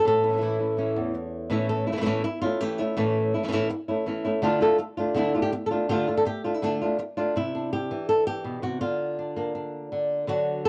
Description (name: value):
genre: flamenco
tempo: 164 BPM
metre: 4/4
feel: straight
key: A phrygian dominant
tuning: A4 = 440 Hz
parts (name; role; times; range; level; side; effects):
- flamenco guitar; melody; 0.0-10.7 s; E2 to A4; -26 LUFS; equal; none
- flamenco guitar; stabs; 0.0-1.2 s; A2 to E4; -35 LUFS; equal; cassette tape
room: wet booth ambience, RT60 0.2 s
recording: home recording on cassette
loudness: -26 LUFS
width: mono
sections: 0.0-1.5 A section; 1.5-7.4 B section; 7.4-10.7 C section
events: none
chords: 0.0 A; 4.4 Dm; 7.4 Cadd9; 8.8 Bb/D